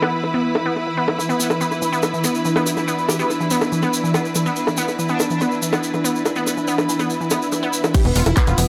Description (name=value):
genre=psychedelic trance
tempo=142 BPM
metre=4/4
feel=straight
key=unclear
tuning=A4 = 440 Hz
part: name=evolving wavetable pad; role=sustained chords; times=0.0-8.7 s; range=E3 to E4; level=-28 LUFS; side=equal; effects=chorus, built-in reverb, sidechain pumping
part: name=unison pluck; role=riff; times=0.0-8.6 s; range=E3 to F4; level=-25 LUFS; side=equal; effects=sidechain pumping, dub echo
part: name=drum and bass drum kit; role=drums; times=0.0-8.7 s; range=bongos, crash cymbal, handclaps, hi-hat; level=-26 LUFS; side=equal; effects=low-pass filter on perc, low-pass filter on hats, low-pass filter on cymbals, low-pass filter on snare, low-pass filter on room
part: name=rich studio string section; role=texture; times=0.0-8.7 s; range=E4 to B5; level=-27 LUFS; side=equal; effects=sidechain pumping
part: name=tube shaker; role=percussion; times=1.2-8.7 s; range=none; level=-30 LUFS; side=equal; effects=none
part: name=metallic wobble bass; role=second line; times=1.4-8.3 s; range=B3 to G4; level=-34 LUFS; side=equal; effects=none
part: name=swell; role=sound effects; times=7.3-7.9 s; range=none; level=-35 LUFS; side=equal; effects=none
part: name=unison lead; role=melody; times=7.9-8.6 s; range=B3 to G4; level=-26 LUFS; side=equal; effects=phaser, cassette tape, sidechain pumping, dub echo
part: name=electronic kick drum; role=drums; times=7.9-8.5 s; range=none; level=-18 LUFS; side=equal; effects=none
part: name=tight sequencer bass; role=bass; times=8.1-8.7 s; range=E1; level=-20 LUFS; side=equal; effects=none
room=moderate digital room reverb, RT60 1.4 s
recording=none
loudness=-20 LUFS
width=mono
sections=0.0-7.9 A section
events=swell 7.3-7.9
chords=0.0 E5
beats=0.34 0.76 | 1.19 1.61 2.03 2.45 | 2.88 3.30 3.72 4.14 | 4.57 4.99 5.41 5.83 | 6.25 6.68 7.10 7.52 | 7.95 8.37